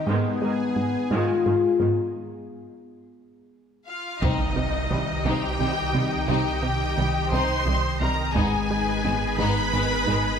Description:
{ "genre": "cinematic, hybrid orchestral and electronic film score", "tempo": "58 BPM (dotted quarters)", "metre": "6/8", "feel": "straight", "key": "unclear", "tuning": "A4 = 440 Hz", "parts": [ { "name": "analog string pad", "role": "sustained chords", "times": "0.0-10.4 s", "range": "Eb3 to Eb5", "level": "-32 LUFS", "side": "right 1 dB", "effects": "ensemble chorus" }, { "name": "mellow French horn section", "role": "sustained chords", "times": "0.0-2.2 s", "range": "Cb4 to F4", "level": "-24 LUFS", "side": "left 5 dB", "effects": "none" }, { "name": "warm symphonic viola section", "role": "accompaniment", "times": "0.1-10.4 s", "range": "Eb3 to C5", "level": "-32 LUFS", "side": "right 2 dB", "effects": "none" }, { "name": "harp-like synth pluck", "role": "arpeggios", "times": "0.1-10.3 s", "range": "C3 to Ab4", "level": "-33 LUFS", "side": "left 2 dB", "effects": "chorus, tape echo" }, { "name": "plucky analog bass", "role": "riff", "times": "0.1-10.3 s", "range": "C2 to Ab3", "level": "-30 LUFS", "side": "right 2 dB", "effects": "none" }, { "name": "rich symphonic cello section", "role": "bass", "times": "0.1-10.2 s", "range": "Ab2 to C3", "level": "-32 LUFS", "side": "right 3 dB", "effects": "none" }, { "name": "clear symphonic violin section", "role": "melody", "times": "3.9-10.4 s", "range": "Eb5 to C6", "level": "-28 LUFS", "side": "left 3 dB", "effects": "none" }, { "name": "rich studio violin section", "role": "second line", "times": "4.2-10.2 s", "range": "G3 to Eb4", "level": "-32 LUFS", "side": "left 4 dB", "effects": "none" }, { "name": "rich symphonic double bass section", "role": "bass", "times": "4.2-10.2 s", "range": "Ab1 to C2", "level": "-34 LUFS", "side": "right 4 dB", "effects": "none" }, { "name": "sub bass with octave", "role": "bass", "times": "4.2-10.4 s", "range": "Ab1 to C2", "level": "-31 LUFS", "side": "right 1 dB", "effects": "none" }, { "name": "taiko ensemble", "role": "drums", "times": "4.2-9.0 s", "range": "none", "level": "-32 LUFS", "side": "equal", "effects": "none" }, { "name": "impact", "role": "sound effects", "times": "4.2-6.3 s", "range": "none", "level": "-34 LUFS", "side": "right 1 dB", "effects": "none" } ], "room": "moderate scoring stage reverb, RT60 2.1 s", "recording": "none", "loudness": "-21 LUFS", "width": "side -7 dB against mid", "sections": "0.0-4.2 A section; 4.2-10.4 B section", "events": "break 2.2-4.2; impact 4.2-6.3", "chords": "0.1 Abm; 2.2 N.C.; 4.2 Cm; 8.4 Abm", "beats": "| 0.08 1.12 | 2.15 3.19 | 4.22 5.25 | 6.29 7.32 | 8.36 9.39" }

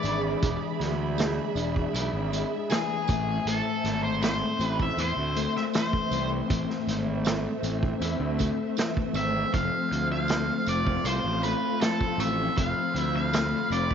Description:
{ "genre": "psychedelic rock", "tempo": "79 BPM", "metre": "4/4", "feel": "straight", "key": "unclear", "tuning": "A4 = 439 Hz", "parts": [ { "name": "octave-fuzz lead guitar", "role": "melody", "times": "0.0-13.9 s", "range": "G#4 to F5", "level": "-30 LUFS", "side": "equal", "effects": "distortion, tape echo" }, { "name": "warm symphonic string section", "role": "sustained chords", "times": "0.0-13.9 s", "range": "A3 to B5", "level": "-34 LUFS", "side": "right 12 dB", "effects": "none" }, { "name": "electric guitar through a small old amp", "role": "riff", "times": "0.0-13.9 s", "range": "E2 to F4", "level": "-30 LUFS", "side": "left 10 dB", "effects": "rotary speaker" }, { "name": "fuzz fingered electric bass", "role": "bass", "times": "0.0-13.9 s", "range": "E1 to E2", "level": "-31 LUFS", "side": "right 2 dB", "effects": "overdrive" }, { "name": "vintage drum kit", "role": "drums", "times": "0.0-13.9 s", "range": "hi-hat, kick drum, snare drum", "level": "-30 LUFS", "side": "right 2 dB", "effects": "none" }, { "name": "tambourine", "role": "percussion", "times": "0.0-13.9 s", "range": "none", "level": "-42 LUFS", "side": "right 16 dB", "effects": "none" } ], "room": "light reverb", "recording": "1960s-style stereo with parts hard left and right, nothing above 7.5 kHz", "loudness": "-24 LUFS", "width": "side -8 dB against mid", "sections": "0.0-13.9 A section", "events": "none", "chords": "0.0 E7; 3.1 Am; 9.5 F", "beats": "| 0.42 1.18 1.94 2.70 | 3.46 4.22 4.98 5.74 | 6.50 7.26 8.02 8.78 | 9.53 10.29 11.05 11.81 | 12.57 13.33" }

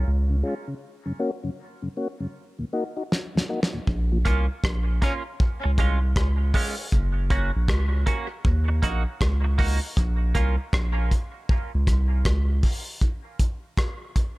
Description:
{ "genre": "dub reggae", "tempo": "79 BPM", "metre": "4/4", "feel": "swing 62% on 16ths", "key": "Bb minor", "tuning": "A4 = 440 Hz", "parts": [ { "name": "soft dub sub bass", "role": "bass", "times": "0.0-12.6 s", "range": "Gb1 to Eb2", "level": "-22 LUFS", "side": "equal", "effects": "none" }, { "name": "mellow tonewheel organ", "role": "accompaniment", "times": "0.3-4.2 s", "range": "Eb2 to Gb4", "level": "-30 LUFS", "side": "left 2 dB", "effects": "overdrive, chorus vibrato, slow rotary speaker" }, { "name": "cloth-damped thuddy drum kit", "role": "drums", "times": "3.1-14.4 s", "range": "hi-hat, kick drum, rim click, snare drum", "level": "-24 LUFS", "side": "equal", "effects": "none" }, { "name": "semi-hollow electric guitar", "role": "accompaniment", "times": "4.3-10.6 s", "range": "Ab3 to Gb4", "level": "-32 LUFS", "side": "right 4 dB", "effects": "analog chorus, dub echo" }, { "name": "breathy tenor saxophone", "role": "melody", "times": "5.0-5.1 s", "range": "Db4", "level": "-38 LUFS", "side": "equal", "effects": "dub echo" } ], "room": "studio reverb", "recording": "none", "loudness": "-22 LUFS", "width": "side -21 dB against mid", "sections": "0.0-3.9 A section; 3.9-14.4 B section", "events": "break 0.0-3.9, 13.0-14.4; drum fill 3.1-3.9", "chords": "0.0 Db; 0.8 Gb; 2.3 Ebm; 3.9 Bbm; 5.4 Db; 6.9 Gb; 8.4 Ebm; 10.0 Bbm; 11.5 N.C.", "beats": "0.06 | 0.82 1.58 2.35 3.11 | 3.87 4.64 5.40 6.16 | 6.92 7.68 8.45 9.21 | 9.97 10.73 11.49 12.25 | 13.01 13.78" }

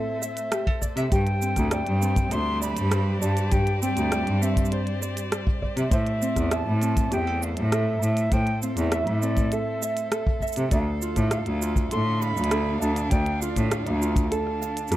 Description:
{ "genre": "folktronica", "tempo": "100 BPM", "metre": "4/4", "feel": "straight", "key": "A minor", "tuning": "A4 = 440 Hz", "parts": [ { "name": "silver concert flute", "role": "melody", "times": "0.0-15.0 s", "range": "D5 to C6", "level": "-31 LUFS", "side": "right 1 dB", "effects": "tape echo" }, { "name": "warm string quartet", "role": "sustained chords", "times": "0.0-15.0 s", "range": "D3 to F5", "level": "-35 LUFS", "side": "equal", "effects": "vintage 12-bit sampler grit" }, { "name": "ukulele", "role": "arpeggios", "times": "0.0-15.0 s", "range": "C4 to F5", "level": "-32 LUFS", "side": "right 1 dB", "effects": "tape echo" }, { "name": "minimal click drum kit", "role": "drums", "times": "0.2-15.0 s", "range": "cabasa, hi-hat, rim click", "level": "-32 LUFS", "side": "right 2 dB", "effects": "none" }, { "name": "kick drum", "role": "drums", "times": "0.7-14.3 s", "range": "none", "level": "-25 LUFS", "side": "equal", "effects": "none" }, { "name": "rich cello", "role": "bass", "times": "1.0-15.0 s", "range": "D2 to C3", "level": "-25 LUFS", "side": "equal", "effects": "none" } ], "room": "small room ambience", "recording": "dry, close 1970s-style studio recording", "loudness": "-22 LUFS", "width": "side -14 dB against mid", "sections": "0.0-15.0 A section", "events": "none", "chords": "0.0 Am; 1.1 Gsus4; 5.9 Am; 10.7 Dm", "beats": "0.52 | 1.12 1.72 2.32 2.92 | 3.52 4.12 4.72 5.32 | 5.92 6.52 7.12 7.72 | 8.32 8.92 9.52 10.12 | 10.72 11.32 11.92 12.52 | 13.12 13.72 14.32 14.92" }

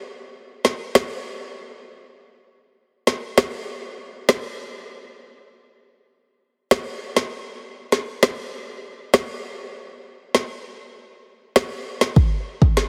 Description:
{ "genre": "dancehall", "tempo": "99 BPM", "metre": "4/4", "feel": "straight", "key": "none", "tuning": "none", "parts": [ { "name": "afro-pop drum kit", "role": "drums", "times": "0.6-12.9 s", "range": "kick drum, rim click, snare drum", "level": "-22 LUFS", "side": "equal", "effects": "overdrive" } ], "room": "light reverb", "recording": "heavily compressed radio sound, multiband compression", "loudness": "-22 LUFS", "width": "mono", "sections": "0.0-2.5 A section; 2.5-12.9 B section", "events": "break 1.9-2.5; kick muted 2.5-12.2", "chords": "none", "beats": "| 0.04 0.65 1.25 1.86 | 2.47 3.07 3.68 4.28 | 4.89 5.50 6.10 6.71 | 7.32 7.92 8.53 9.13 | 9.74 10.35 10.95 11.56 | 12.16 12.77" }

